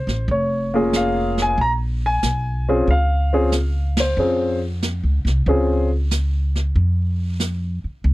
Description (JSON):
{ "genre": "jazz piano trio", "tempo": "93 BPM", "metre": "4/4", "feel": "swing 69% on 8ths", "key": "Bb minor", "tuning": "A4 = 443 Hz", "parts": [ { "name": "warm concert grand piano", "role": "melody", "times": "0.0-5.9 s", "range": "Bb3 to Bb5", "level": "-20 LUFS", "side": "left 1 dB", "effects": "none" }, { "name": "upright bass", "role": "bass", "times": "0.0-8.1 s", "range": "F1 to F2", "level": "-20 LUFS", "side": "equal", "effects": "none" }, { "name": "jazz brush drum kit", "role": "drums", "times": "0.1-8.1 s", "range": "brushed snare drum, hi-hat, kick drum, ride cymbal, snare drum", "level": "-25 LUFS", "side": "right 1 dB", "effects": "none" } ], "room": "little or no reverb", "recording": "dry, close 1970s-style studio recording", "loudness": "-18 LUFS", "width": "side -18 dB against mid", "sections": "0.0-8.1 A section", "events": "band accent 3.9-4.2", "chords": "0.0 Bbm9 (rootless)" }